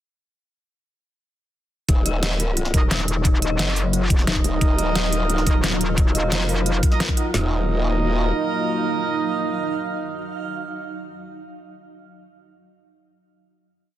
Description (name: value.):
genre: dark technical drum and bass.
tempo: 176 BPM.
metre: 4/4.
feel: straight.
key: Eb minor.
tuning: A4 = 439 Hz.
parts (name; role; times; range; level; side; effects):
dark detuned synth bell; arpeggios; 1.9-7.5 s; Eb4 to Eb5; -30 LUFS; left 3 dB; chorus, phaser, sidechain pumping, tape echo.
growl bass; bass; 1.9-8.3 s; Eb1; -22 LUFS; equal; chorus, tube saturation, sidechain pumping.
drum and bass drum kit; drums; 1.9-7.4 s; kick drum, snare drum, toms; -19 LUFS; equal; overdrive.
dubstep drum kit; drums; 1.9-7.2 s; hi-hat, snare drum; -25 LUFS; equal; none.
granular cloud pad; texture; 3.0-10.8 s; Gb3 to F5; -29 LUFS; right 2 dB; built-in reverb, sidechain pumping.
dark brass ensemble; stabs; 2.7-10.8 s; Eb4 to Eb5; -27 LUFS; right 5 dB; tape echo.
metallic wobble bass; bass; 2.7-6.8 s; Eb1 to Gb1; -23 LUFS; equal; chorus, tube saturation.
dark analog pad; sustained chords; 4.6-10.8 s; Gb3 to Eb5; -29 LUFS; left 1 dB; chorus, sidechain pumping.
room: light reverb, digital ambience.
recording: dense, heavily limited modern master.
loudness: -19 LUFS.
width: side -12 dB against mid.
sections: 1.9-7.3 drop; 7.3-10.1 final chord.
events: drop 1.9-7.3.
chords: 1.9 Ebmadd9.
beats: | 1.89 2.23 2.57 2.91 | 3.25 3.59 3.93 4.27 | 4.61 4.95 5.29 5.64 | 5.98 6.32 6.66 7.00 | 7.34 7.68 8.02 8.36 | 8.70 9.04 9.39 9.73.